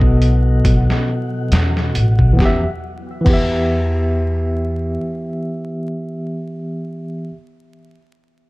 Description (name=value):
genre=trip hop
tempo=69 BPM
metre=4/4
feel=swing 54% on 16ths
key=E harmonic minor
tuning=A4 = 440 Hz
part: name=bright tine electric piano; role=accompaniment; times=0.0-7.4 s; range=B2 to E5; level=-20 LUFS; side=equal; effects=tremolo, tape echo
part: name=dark analog pad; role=sustained chords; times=0.0-2.4 s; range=none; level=barely audible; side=none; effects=none
part: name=upright bass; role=bass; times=0.0-5.0 s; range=A1 to E2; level=-17 LUFS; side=equal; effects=none
part: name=trip hop sampler-style drum kit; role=drums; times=0.0-3.5 s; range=crash cymbal, hi-hat, kick drum, snare drum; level=-18 LUFS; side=equal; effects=vintage 12-bit sampler grit
part: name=wind-like tuned noise texture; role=texture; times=0.0-2.4 s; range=F#3 to F#5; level=-31 LUFS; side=left 1 dB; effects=built-in reverb
room=little or no reverb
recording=dark, warm production, vinyl crackle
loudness=-15 LUFS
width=side -21 dB against mid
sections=0.0-2.4 A section; 2.4-5.9 B section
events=none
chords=0.0 B7sus4; 2.4 Em